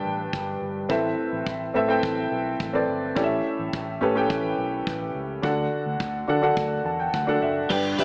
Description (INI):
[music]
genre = piano-driven pop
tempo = 106 BPM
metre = 4/4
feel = straight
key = unclear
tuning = A4 = 441 Hz
[part]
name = warm upright piano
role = accompaniment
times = 0.0-8.0 s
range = G2 to A5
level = -26 LUFS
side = equal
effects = none
[part]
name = vintage muted fingered electric bass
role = bass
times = 0.1-8.0 s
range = F#1 to D3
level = -37 LUFS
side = equal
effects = none
[part]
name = unplugged drum kit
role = drums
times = 0.3-8.0 s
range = crash cymbal, hi-hat, kick drum, toms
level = -35 LUFS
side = equal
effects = none
[part]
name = twelve-string electric guitar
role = riff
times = 7.7-8.0 s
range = G3 to B4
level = -29 LUFS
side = equal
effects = none
[sound]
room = moderate lush hall reverb, RT60 2.4 s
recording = small speaker sound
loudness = -25 LUFS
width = mono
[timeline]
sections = 0.0-7.7 A section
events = upright piano fill 6.6-7.7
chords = 0.0 G; 0.9 Amadd9; 3.2 A7; 5.4 D